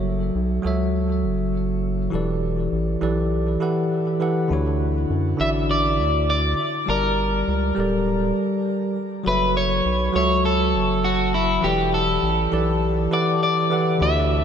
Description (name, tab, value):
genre	sunset chillout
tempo	101 BPM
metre	4/4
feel	swing 56% on 16ths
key	unclear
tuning	A4 = 439 Hz
part	bell-like tine electric piano	accompaniment	0.0-14.4 s	D3 to A5	-22 LUFS	equal	auto-pan, shimmer reverb, ping-pong delay
part	round analog bass	bass	0.0-14.4 s	D1 to F#2	-24 LUFS	equal	none
part	electric guitar at the edge of break-up	melody	5.4-14.4 s	E4 to E5	-22 LUFS	left 1 dB	wide subtle chorus, shimmer reverb, analog delay
room	wet cathedral reverb, RT60 5.2 s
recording	dreamy mix soaked in reverb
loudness	-19 LUFS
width	side -8 dB against mid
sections	0.0-14.0 A section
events	none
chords	0.0 F#m7; 2.1 A9sus4/E; 4.5 Dmaj9; 6.6 Gmadd9; 9.0 F#m7; 11.6 A9sus4/E